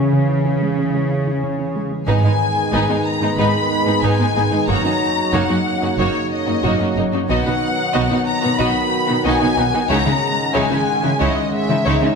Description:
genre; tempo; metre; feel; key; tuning
cinematic, hybrid orchestral and electronic film score; 92 BPM; 4/4; straight; C# dorian; A4 = 440 Hz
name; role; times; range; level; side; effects
chorused pulse-width pad; sustained chords; 0.0-12.2 s; D#3 to F#5; -23 LUFS; equal; none
dark French horn section; sustained chords; 0.0-12.2 s; D#3 to D#4; -28 LUFS; left 4 dB; none
clear symphonic cello section; bass; 0.0-12.1 s; F#2 to C#3; -23 LUFS; right 3 dB; none
analog pluck; arpeggios; 0.1-12.1 s; C#3 to F#4; -27 LUFS; left 2 dB; none
warm symphonic violin section; melody; 2.1-12.2 s; C#5 to B5; -21 LUFS; left 4 dB; none
rich symphonic violin section; second line; 2.1-12.1 s; G#3 to D#5; -25 LUFS; left 3 dB; none
warm symphonic viola section; accompaniment; 2.1-12.1 s; G#3 to D#4; -25 LUFS; right 2 dB; none
clear trombone section; sustained chords; 2.1-12.2 s; C#3 to G#3; -27 LUFS; right 5 dB; none
warm symphonic double bass section; bass; 2.1-11.9 s; F#1 to C#2; -24 LUFS; right 4 dB; none
room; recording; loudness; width
wet scoring stage reverb, RT60 1.5 s; none; -15 LUFS; side -5 dB against mid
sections
0.0-2.1 A section; 2.1-12.2 B section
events
none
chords
0.0 C#m; 2.1 G#m; 4.7 F#6; 7.3 B; 9.9 C#madd9

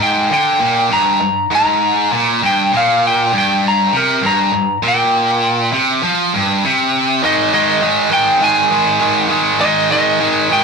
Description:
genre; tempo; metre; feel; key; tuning
rock; 100 BPM; 4/4; straight; G phrygian; A4 = 441 Hz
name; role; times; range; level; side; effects
lightly driven lead guitar; melody; 0.0-10.6 s; Bb4 to Bb5; -15 LUFS; equal; none
high-gain distorted guitar; riff; 0.0-10.6 s; G2 to Ab3; -14 LUFS; right 1 dB; distortion
room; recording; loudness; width
moderate small room reverb, RT60 0.6 s; rough rehearsal-room recording, warm saturation; -12 LUFS; side -5 dB against mid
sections
0.0-7.2 A section; 7.2-10.6 B section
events
none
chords
0.0 Gm; 7.2 Ab5

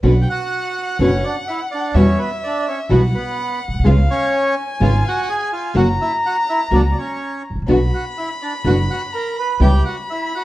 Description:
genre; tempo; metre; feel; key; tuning
tango; 126 BPM; 4/4; rubato; B harmonic minor; A4 = 438 Hz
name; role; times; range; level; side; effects
nylon-string guitar; accompaniment; 0.0-9.7 s; B2 to G#4; -18 LUFS; left 1 dB; none
rich chamber string section; stabs; 0.0-9.8 s; G3 to B4; -24 LUFS; right 2 dB; none
upright bass; bass; 0.0-9.8 s; F#1 to E2; -16 LUFS; equal; none
warm violin; second line; 0.1-10.4 s; E5 to B5; -24 LUFS; left 2 dB; none
bandoneon; melody; 0.2-10.4 s; B3 to B5; -22 LUFS; right 2 dB; none
room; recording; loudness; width
moderate club reverb, RT60 0.8 s; dark, warm production, vinyl crackle; -16 LUFS; side -16 dB against mid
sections
0.0-10.4 A section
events
none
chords
0.0 Bmadd9; 2.0 Emadd9; 3.9 C#7; 5.8 F#; 7.7 Bm; 9.6 C#m7b5

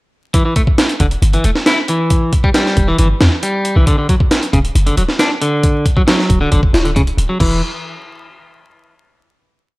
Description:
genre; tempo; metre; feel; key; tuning
breakbeat, breaks; 136 BPM; 4/4; straight; E dorian; A4 = 439 Hz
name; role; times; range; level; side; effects
clean electric guitar; riff; 0.3-7.6 s; C#3 to E4; -17 LUFS; equal; tube saturation, analog delay
breakbeat sampler-style drum kit; drums; 0.3-7.5 s; crash cymbal, hi-hat, kick drum, snare drum; -14 LUFS; equal; none
warm 808-style bass; bass; 1.0-7.6 s; D1 to E2; -14 LUFS; equal; transformer saturation
room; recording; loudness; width
digital ambience; dry, gritty hardware recording, transformer saturation, vinyl crackle; -11 LUFS; side -21 dB against mid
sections
0.3-7.4 drop; 7.4-9.2 final chord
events
drop 0.3-7.4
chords
0.3 Em; 3.9 D; 7.4 N.C.

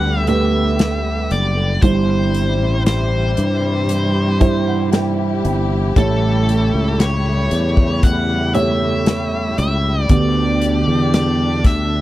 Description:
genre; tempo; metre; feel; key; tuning
pop ballad; 58 BPM; 4/4; straight; G major; A4 = 441 Hz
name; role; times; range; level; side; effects
high-gain lead guitar; melody; 0.0-12.0 s; A4 to F#5; -22 LUFS; left 1 dB; distortion
felt-muted upright piano; accompaniment; 0.0-12.0 s; G2 to G5; -20 LUFS; right 3 dB; none
rich studio string section; sustained chords; 0.0-12.0 s; B2 to G4; -25 LUFS; left 2 dB; none
sustaining fretless electric bass; bass; 0.0-12.0 s; F#1 to G2; -19 LUFS; left 1 dB; none
modern studio drum kit; drums; 0.3-11.9 s; hi-hat, kick drum, snare drum; -15 LUFS; left 1 dB; none
room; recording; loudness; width
little or no reverb; dry, close 1970s-style studio recording; -14 LUFS; side -15 dB against mid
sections
0.0-12.0 A section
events
felt piano fill 3.9-6.0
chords
0.0 Gadd9; 1.8 C/G; 6.0 A7; 10.1 G/D

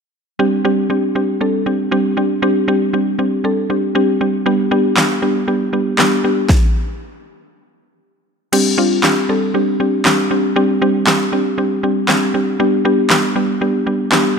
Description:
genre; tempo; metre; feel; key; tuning
dance-pop; 118 BPM; 4/4; straight; unclear; A4 = 440 Hz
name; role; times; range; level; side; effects
mallet-like synth pluck; accompaniment; 0.4-14.3 s; G3 to A4; -14 LUFS; equal; chorus, sidechain pumping
deep house drum kit; drums; 5.0-14.2 s; crash cymbal, handclaps, kick drum, snare drum; -16 LUFS; equal; overdrive
room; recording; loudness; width
light reverb, digital ambience; none; -13 LUFS; side -6 dB against mid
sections
0.4-8.5 A section; 8.5-14.4 B section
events
stop 6.5-8.5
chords
0.4 Csus2; 4.5 G; 8.3 N.C.; 8.5 Csus2; 12.6 G

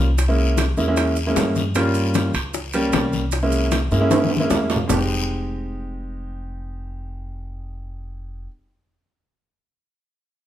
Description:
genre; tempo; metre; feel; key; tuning
Afro-Cuban jazz; 153 BPM; 4/4; straight; F minor; A4 = 435 Hz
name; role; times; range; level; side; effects
clear concert grand piano; accompaniment; 0.0-8.5 s; G3 to G4; -22 LUFS; equal; none
upright bass; bass; 0.0-8.5 s; F1 to G2; -24 LUFS; equal; none
bongos; percussion; 0.2-5.0 s; none; -28 LUFS; left 6 dB; none
congas; percussion; 0.2-5.0 s; none; -28 LUFS; left 4 dB; none
guiro; percussion; 0.2-5.0 s; none; -33 LUFS; left 5 dB; none
maracas; percussion; 0.2-5.0 s; none; -34 LUFS; right 6 dB; none
timbales; percussion; 0.2-5.0 s; none; -26 LUFS; right 4 dB; none
room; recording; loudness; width
light reverb; minimal, uncompressed stereo recording; -18 LUFS; side -12 dB against mid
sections
0.0-4.9 A section; 4.9-8.0 B section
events
drum fill 4.1-4.9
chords
0.2 C7b9b13; 1.8 Gm7b5; 3.3 C7b9b13; 4.9 Fm9

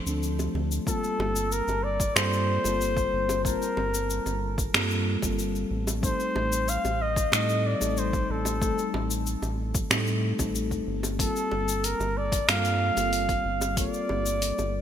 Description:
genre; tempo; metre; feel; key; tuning
sunset chillout; 93 BPM; 4/4; straight; G minor; A4 = 438 Hz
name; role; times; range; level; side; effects
mellow flugelhorn; melody; 0.0-14.8 s; A4 to F5; -29 LUFS; left 1 dB; digital delay
mellow FM electric piano; accompaniment; 0.0-14.8 s; F3 to A5; -31 LUFS; moving between left 6 dB and right 4 dB; chorus, auto-pan, digital delay
round analog bass; bass; 0.1-14.8 s; G1 to A2; -30 LUFS; equal; none
deep house drum kit; drums; 0.1-14.7 s; finger snaps, hi-hat, shaker; -28 LUFS; left 1 dB; gated reverb
bongos; percussion; 0.4-14.7 s; none; -38 LUFS; right 2 dB; none
electronic kick drum; drums; 0.9-13.9 s; none; -31 LUFS; equal; none
room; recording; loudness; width
moderate lush hall reverb, RT60 2.7 s; bright 1980s-style digital production; -24 LUFS; side -9 dB against mid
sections
0.9-14.8 A section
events
none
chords
0.0 Dm7; 0.9 Gm11; 6.0 Am7b5; 11.2 Gm11

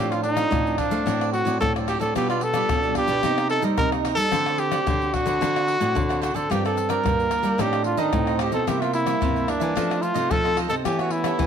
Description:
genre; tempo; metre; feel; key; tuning
samba and choro; 110 BPM; 4/4; straight; G minor; A4 = 440 Hz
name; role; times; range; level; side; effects
warm trumpet; melody; 0.0-11.5 s; D4 to Bb4; -24 LUFS; equal; none
breathy trombone; second line; 0.0-11.5 s; A3 to Eb4; -29 LUFS; right 11 dB; none
cavaquinho; accompaniment; 0.0-11.5 s; D4 to G5; -32 LUFS; right 13 dB; none
nylon-string guitar; accompaniment; 0.0-11.5 s; G2 to Bb4; -33 LUFS; left 11 dB; none
nylon-string guitar; bass; 0.0-11.5 s; G2 to A3; -28 LUFS; equal; none
egg shaker, pandeiro, tamborim and surdo; percussion; 0.1-11.5 s; none; -28 LUFS; left 6 dB; none
room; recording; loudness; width
light reverb; 1960s-style stereo with parts hard left and right; -20 LUFS; side -8 dB against mid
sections
0.0-11.5 A section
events
none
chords
0.0 F/A; 1.1 D7/A; 2.1 G7/B; 3.2 Cm7; 4.3 D7; 6.5 Gm7; 7.6 Adim; 8.7 C7; 9.8 F7; 10.8 A7/E

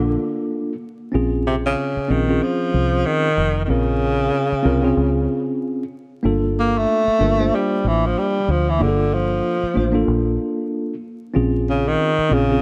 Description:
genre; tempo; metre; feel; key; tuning
hip hop; 94 BPM; 4/4; swing 59% on 16ths; unclear; A4 = 440 Hz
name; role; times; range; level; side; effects
breathy tenor saxophone; melody; 0.0-12.6 s; C3 to Bb3; -22 LUFS; equal; none
mellow tine electric piano; accompaniment; 0.0-12.6 s; Bb3 to C5; -24 LUFS; equal; none
deep dub fingered electric bass; bass; 0.0-12.6 s; F1 to D2; -24 LUFS; equal; none
room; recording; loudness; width
moderate echo chamber reverb, RT60 2.2 s; dark, warm production, vinyl crackle; -20 LUFS; mono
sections
0.0-12.6 A section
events
none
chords
0.0 Gm9 (rootless); 1.1 Bbm9; 6.2 Gm9; 11.4 Bbm9

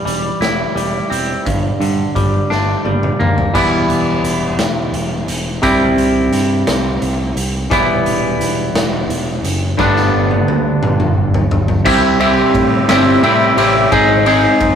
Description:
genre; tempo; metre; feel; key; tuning
indie rock; 58 BPM (dotted quarters); 6/8; straight; C major; A4 = 441 Hz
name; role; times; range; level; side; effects
distorted electric guitar; riff; 0.0-14.8 s; G2 to Ab4; -14 LUFS; equal; overdrive
growling fingered electric bass; bass; 0.1-14.8 s; E1 to A2; -20 LUFS; equal; overdrive
raw garage drum kit; drums; 0.1-14.8 s; crash cymbal, hi-hat, kick drum, ride cymbal, snare drum, toms; -19 LUFS; equal; none
room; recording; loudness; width
moderate small room reverb, RT60 0.5 s; rough rehearsal-room recording, tube saturation; -12 LUFS; side -8 dB against mid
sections
0.0-3.5 A section; 3.5-11.9 B section; 11.9-14.8 C section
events
drum fill 2.5-3.5, 9.8-11.9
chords
0.0 C/E; 1.5 Gm; 3.5 Em; 5.6 C; 7.7 Em; 9.8 G; 11.9 C; 13.9 Ab

